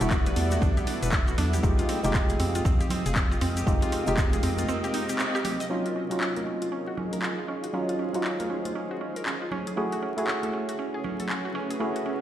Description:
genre	deep house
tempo	118 BPM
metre	4/4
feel	swing 61% on 16ths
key	unclear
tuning	A4 = 441 Hz
part	warm analog pad	sustained chords	0.0-12.2 s	G3 to Eb6	-37 LUFS	equal	chorus, sidechain pumping
part	mallet-like synth pluck	arpeggios	0.0-12.2 s	C4 to Eb5	-34 LUFS	right 2 dB	chorus, sidechain pumping, tape echo
part	percussive organ stab	stabs	0.0-12.2 s	Gb3 to Ab4	-31 LUFS	right 1 dB	chorus, sidechain pumping, tape echo
part	organ-like FM bass	bass	0.0-4.6 s	E1 to F2	-28 LUFS	equal	sidechain pumping
part	punchy analog drum machine	drums	0.0-12.0 s	handclaps, hi-hat	-33 LUFS	left 1 dB	overdrive
part	tube shaker	percussion	0.0-5.7 s	none	-42 LUFS	left 4 dB	none
part	granular cloud pad	texture	0.0-12.2 s	B3 to F5	-35 LUFS	equal	built-in reverb, sidechain pumping
part	electronic kick drum	drums	0.1-4.3 s	none	-25 LUFS	equal	none
part	congas	percussion	0.3-11.3 s	none	-37 LUFS	right 2 dB	none
room	light reverb, digital ambience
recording	played on a big sound system in a bare room, large studio reverb, vinyl crackle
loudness	-24 LUFS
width	side -11 dB against mid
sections	0.0-5.7 A section; 5.7-12.2 B section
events	break 4.7-5.7; band accent 5.2; filter sweep on synth stab 5.7-12.2; filter sweep on synth arpeggio sound 5.7-12.2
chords	0.0 Em9; 1.6 Fm9; 5.7 Ebm9; 9.5 Gbm9

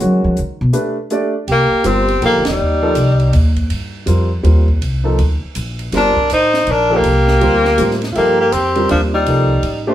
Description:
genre	modal jazz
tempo	162 BPM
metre	3/4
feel	swing 64% on 8ths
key	C dorian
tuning	A4 = 439 Hz
part	warm grand piano	accompaniment	0.0-9.9 s	D#3 to D5	-19 LUFS	right 1 dB	none
part	upright bass	bass	0.0-9.9 s	Eb1 to F#3	-16 LUFS	equal	none
part	compact cocktail drum kit	drums	0.0-9.7 s	hi-hat, kick drum, ride cymbal, snare drum	-28 LUFS	right 1 dB	none
part	clear tenor saxophone	melody	1.5-3.6, 6.0-9.9 s	F3 to Eb4	-15 LUFS	left 2 dB	none
part	clear alto saxophone	second line	1.5-3.5, 6.0-9.9 s	D4 to C5	-20 LUFS	right 3 dB	none
room	moderate studio reverb, RT60 0.6 s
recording	band playing live in one room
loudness	-12 LUFS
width	side -12 dB against mid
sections	0.0-1.5 A section; 1.5-9.9 B section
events	upright bass solo 0.0-1.5; band accent 2.4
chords	0.4 G; 1.5 Cm7

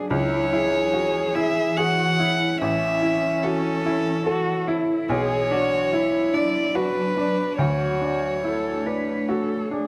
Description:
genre	neoclassical piano and strings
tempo	72 BPM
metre	3/4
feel	rubato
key	unclear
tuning	A4 = 440 Hz
part	dark cello	second line	0.0-9.9 s	C#4 to B4	-30 LUFS	equal	none
part	bright upright piano	accompaniment	0.0-9.9 s	A1 to F#5	-28 LUFS	equal	none
part	glassy FM pad	sustained chords	0.0-9.9 s	E3 to C#5	-32 LUFS	equal	ensemble chorus, built-in reverb, phaser
part	warm violin	melody	0.1-9.7 s	A4 to F#5	-27 LUFS	equal	none
room	light reverb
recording	close, detailed microphones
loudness	-23 LUFS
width	mono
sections	0.1-9.9 A section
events	none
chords	0.1 C#m; 2.6 A; 5.1 Bm; 7.6 Dmaj7

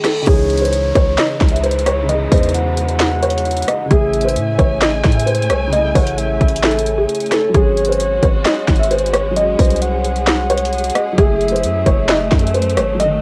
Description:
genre	hip hop, trap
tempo	132 BPM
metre	4/4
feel	half-time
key	C# harmonic minor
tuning	A4 = 436 Hz
part	felt-muted upright piano	melody	0.0-13.2 s	G#4 to E5	-20 LUFS	equal	low-pass filter
part	dark concert grand piano	accompaniment	0.0-13.2 s	C#3 to G#4	-28 LUFS	equal	low-pass filter, cassette tape
part	trap drum kit	drums	0.0-13.1 s	handclaps, hi-hat, kick drum, rim click, snare drum	-19 LUFS	equal	overdrive, cassette tape
part	reverse cymbal and downlifter	sound effects	0.0-3.9 s	none	-34 LUFS	equal	none
part	soft octave-layered synth lead	second line	0.3-12.5 s	C#5 to F#5	-25 LUFS	equal	chorus, cassette tape, analog delay
part	warm studio string section	sustained chords	0.3-13.2 s	C#3 to G#5	-29 LUFS	equal	cassette tape
part	hard-hitting 808-style bass	bass	0.3-13.2 s	F#1 to A2	-23 LUFS	equal	none
room	light reverb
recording	home recording on cassette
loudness	-15 LUFS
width	mono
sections	0.3-13.2 A section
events	break 0.0; reverse cymbal 0.0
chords	0.3 C#madd9; 3.9 Amaj7; 7.5 G#7sus4; 11.2 F#madd9

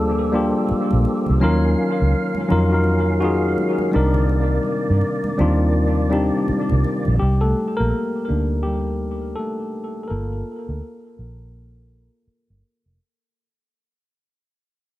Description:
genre	R&B, neo-soul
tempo	83 BPM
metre	4/4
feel	swing 61% on 16ths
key	C dorian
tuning	A4 = 440 Hz
part	tine electric piano	accompaniment	0.0-13.0 s	Gb3 to Bb4	-20 LUFS	left 2 dB	tape echo
part	percussive tonewheel organ	sustained chords	0.0-7.2 s	C3 to F5	-27 LUFS	right 2 dB	overdrive, chorus vibrato, slow rotary speaker
part	vintage muted fingered electric bass	bass	0.0-13.0 s	F1 to G2	-20 LUFS	equal	none
part	congas	percussion	0.7-7.2 s	none	-33 LUFS	right 4 dB	tape echo
room	light reverb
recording	echo-heavy mix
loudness	-17 LUFS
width	side -16 dB against mid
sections	0.0-7.2 A section; 7.2-13.0 B section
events	fade-out 7.2-13.0; tine electric piano solo 7.2-13.0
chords	0.0 Gm9; 1.4 Ebm9; 3.9 Cm9; 7.2 Cm9 (rootless); 10.1 Gm9

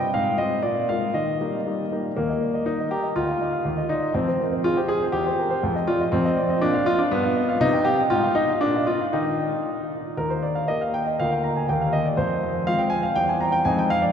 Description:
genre	classical-period piano sonatina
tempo	120 BPM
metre	2/4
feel	straight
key	Eb major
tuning	A4 = 440 Hz
part	clear concert grand piano	solo	0.0-14.1 s	D2 to Bb5	-20 LUFS	equal	none
room	wet cathedral reverb, RT60 5.1 s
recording	minimal, uncompressed stereo recording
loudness	-21 LUFS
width	side -8 dB against mid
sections	0.0-2.2 A section; 2.2-10.2 B section; 10.2-14.1 B section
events	none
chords	0.1 Fm/Ab; 0.6 Bb7; 1.1 Eb; 2.2 Eb5; 3.2 Dm; 3.7 Ebsus2; 4.2 Fm; 5.1 C/E; 5.6 Ebmaj7sus2/F; 6.6 Bb; 7.1 G7; 7.6 Cm; 8.1 Fm/Ab; 8.6 Bb; 9.1 Eb; 11.2 Bb/D; 11.7 Eb; 12.2 Fm; 13.2 C/E

